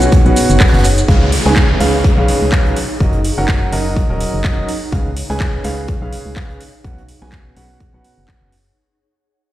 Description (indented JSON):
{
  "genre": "piano house",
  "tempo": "125 BPM",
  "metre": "4/4",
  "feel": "swing 56% on 16ths",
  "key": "Db mixolydian",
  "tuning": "A4 = 439 Hz",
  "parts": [
    { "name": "clear upright piano", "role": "riff", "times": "0.0-8.5 s", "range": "Cb3 to Ab5", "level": "-19 LUFS", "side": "right 1 dB", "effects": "sidechain pumping, tape echo" },
    { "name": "organ-like FM bass", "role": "bass", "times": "0.0-8.7 s", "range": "Eb1 to Db2", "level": "-17 LUFS", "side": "equal", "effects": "sidechain pumping" },
    { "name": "house drum kit", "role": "drums", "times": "0.0-8.6 s", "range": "handclaps, hi-hat, shaker", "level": "-23 LUFS", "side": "equal", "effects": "none" },
    { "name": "ethereal airy pad", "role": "texture", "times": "0.0-8.8 s", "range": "Eb4 to Gb5", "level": "-23 LUFS", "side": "right 1 dB", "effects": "ensemble chorus, built-in reverb, phaser, sidechain pumping" },
    { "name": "electronic kick drum", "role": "drums", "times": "0.1-8.4 s", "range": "none", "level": "-14 LUFS", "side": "equal", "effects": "none" },
    { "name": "open jazz drum kit", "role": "drums", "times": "0.1-8.7 s", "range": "hi-hat, snare drum", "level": "-32 LUFS", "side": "right 3 dB", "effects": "none" },
    { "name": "downlifter", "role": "sound effects", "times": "1.1-4.9 s", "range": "none", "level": "-23 LUFS", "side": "equal", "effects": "none" }
  ],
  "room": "light reverb, digital ambience",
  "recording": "played on a big sound system in a bare room, stone room reverb",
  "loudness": "-12 LUFS",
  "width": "side -14 dB against mid",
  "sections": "0.0-1.1 A section; 1.1-8.8 B section",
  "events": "drop 0.0-1.1; fade-out 1.1-8.8",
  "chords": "0.0 Cbsus2; 1.1 Db7; 2.8 Gb6; 4.9 Db7; 6.8 Cbsus2",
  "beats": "0.12 0.60 | 1.08 1.56 2.04 2.52 | 3.00 3.48 3.96 4.45 | 4.92 5.41 5.88 6.37 | 6.84 7.33 7.80 8.29"
}